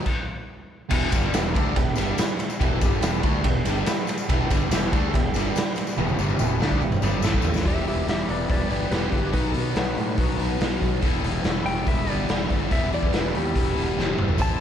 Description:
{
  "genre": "classic rock",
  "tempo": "142 BPM",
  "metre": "4/4",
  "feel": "straight",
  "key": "E minor, E harmonic minor from 7.7 s",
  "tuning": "A4 = 440 Hz",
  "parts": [
    { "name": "overdriven semi-hollow guitar", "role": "riff", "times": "0.0-14.6 s", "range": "E2 to G4", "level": "-30 LUFS", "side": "left 10 dB", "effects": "phaser, slapback echo" },
    { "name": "sludgy distorted guitar", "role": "riff", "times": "0.0-14.6 s", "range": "E2 to E4", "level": "-30 LUFS", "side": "right 9 dB", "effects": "overdrive, slapback echo" },
    { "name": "raw garage drum kit", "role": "drums", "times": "0.1-14.5 s", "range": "crash cymbal, hi-hat, kick drum, ride cymbal, snare drum, toms", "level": "-24 LUFS", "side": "equal", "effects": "none" },
    { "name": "tack piano", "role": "accompaniment", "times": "0.9-7.6, 14.4-14.6 s", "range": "E4 to E5", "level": "-34 LUFS", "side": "right 7 dB", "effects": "none" },
    { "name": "string machine, cellos", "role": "sustained chords", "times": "0.9-14.6 s", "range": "E3 to A4", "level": "-38 LUFS", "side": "left 1 dB", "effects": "none" },
    { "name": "fuzz fingered electric bass", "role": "bass", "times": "0.9-14.6 s", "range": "E1 to B2", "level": "-28 LUFS", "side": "equal", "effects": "overdrive" },
    { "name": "tambourine", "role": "percussion", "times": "0.9-7.6, 14.4-14.5 s", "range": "none", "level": "-40 LUFS", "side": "left 13 dB", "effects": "none" },
    { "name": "clean lap steel guitar", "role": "melody", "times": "7.7-14.6 s", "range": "D#4 to A5", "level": "-30 LUFS", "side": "equal", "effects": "analog delay" }
  ],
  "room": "light reverb, small room ambience",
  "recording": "none",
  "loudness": "-21 LUFS",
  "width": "side -9 dB against mid",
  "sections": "0.9-7.7 A section; 7.7-14.6 B section",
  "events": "stop 0.1-0.9; drum fill 6.0-7.7, 14.0-14.4; electric slide guitar solo 7.7-14.6",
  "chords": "0.0 N.C.; 0.9 Em; 7.2 A5; 7.7 Em; 9.3 B; 11.0 Em"
}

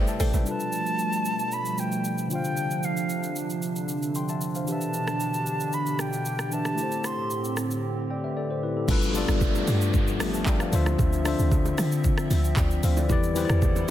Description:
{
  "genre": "amapiano",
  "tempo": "114 BPM",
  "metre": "4/4",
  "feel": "straight",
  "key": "D dorian",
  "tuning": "A4 = 440 Hz",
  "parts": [
    { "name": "tine electric piano", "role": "accompaniment", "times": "0.0-13.9 s", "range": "D3 to C6", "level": "-30 LUFS", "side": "left 5 dB", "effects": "none" },
    { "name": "hollow soft pad", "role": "sustained chords", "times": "0.0-13.9 s", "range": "A2 to E5", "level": "-30 LUFS", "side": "right 2 dB", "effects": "chorus, sidechain pumping" },
    { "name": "deep log drum bass", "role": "bass", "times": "0.0-0.5, 8.9-13.8 s", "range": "G1 to D3", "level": "-25 LUFS", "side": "equal", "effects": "none" },
    { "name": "afro-pop drum kit", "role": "drums", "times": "0.1-13.9 s", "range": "crash cymbal, handclaps, hi-hat, kick drum, rim click, shaker", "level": "-29 LUFS", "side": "equal", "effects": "soft clipping on snare" },
    { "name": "bongos and congas", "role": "percussion", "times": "0.3-0.5, 8.9-13.9 s", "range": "none", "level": "-34 LUFS", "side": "right 7 dB", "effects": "none" },
    { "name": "mellow silver concert flute", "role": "melody", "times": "0.5-7.6 s", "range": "F5 to C6", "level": "-30 LUFS", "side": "equal", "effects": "digital delay" },
    { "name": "downlifter", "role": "sound effects", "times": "8.9-13.1 s", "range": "none", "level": "-36 LUFS", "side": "equal", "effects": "none" }
  ],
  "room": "light reverb, digital ambience",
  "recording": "dense, heavily limited modern master",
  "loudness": "-23 LUFS",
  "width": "side -12 dB against mid",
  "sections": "0.5-8.9 A section; 8.9-13.9 B section",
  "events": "drop 8.9-13.9",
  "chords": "0.5 G9; 2.3 Dm7; 4.7 Em7; 6.8 Am7; 8.9 G9; 10.7 Dm9; 13.1 Em7"
}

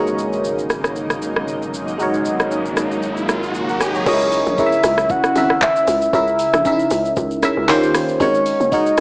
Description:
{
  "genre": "amapiano",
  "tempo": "116 BPM",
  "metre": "4/4",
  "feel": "swing 55% on 16ths",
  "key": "C# dorian",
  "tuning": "A4 = 440 Hz",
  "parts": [
    { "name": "barking FM electric piano", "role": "accompaniment", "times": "0.0-9.0 s", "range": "C#3 to A#5", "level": "-19 LUFS", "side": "equal", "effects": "phaser" },
    { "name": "granular cloud pad", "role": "sustained chords", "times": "0.0-4.0 s", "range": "C#3 to D#4", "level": "-25 LUFS", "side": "equal", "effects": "built-in reverb, sidechain pumping" },
    { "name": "saturated sub bass", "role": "bass", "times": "0.0-4.0 s", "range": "G#1", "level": "-35 LUFS", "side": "equal", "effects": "none" },
    { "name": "riser", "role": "sound effects", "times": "1.6-4.1 s", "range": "none", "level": "-28 LUFS", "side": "equal", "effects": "none" },
    { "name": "smooth R&B drum kit", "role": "drums", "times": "0.1-9.0 s", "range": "crash cymbal, handclaps, hi-hat, kick drum, rim click, shaker", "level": "-22 LUFS", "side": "equal", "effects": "none" },
    { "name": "soft octave-layered synth lead", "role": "melody", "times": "4.1-9.0 s", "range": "C#5 to F#5", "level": "-17 LUFS", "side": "equal", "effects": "chorus, tape echo" },
    { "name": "hollow log drum bass", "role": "bass", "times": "4.1-9.0 s", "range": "F#1 to C#2", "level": "-23 LUFS", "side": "equal", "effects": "none" }
  ],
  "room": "light reverb",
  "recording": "worn, warbling old tape, cassette tape, warbly pitch drift, small speaker sound",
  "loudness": "-15 LUFS",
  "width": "side -28 dB against mid",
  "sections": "0.0-4.1 A section; 4.1-9.0 B section",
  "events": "riser 1.6-4.1; drop 4.1-9.0",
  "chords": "0.0 G#9sus4; 4.1 C#m69; 7.7 D#13; 8.2 G#9sus4"
}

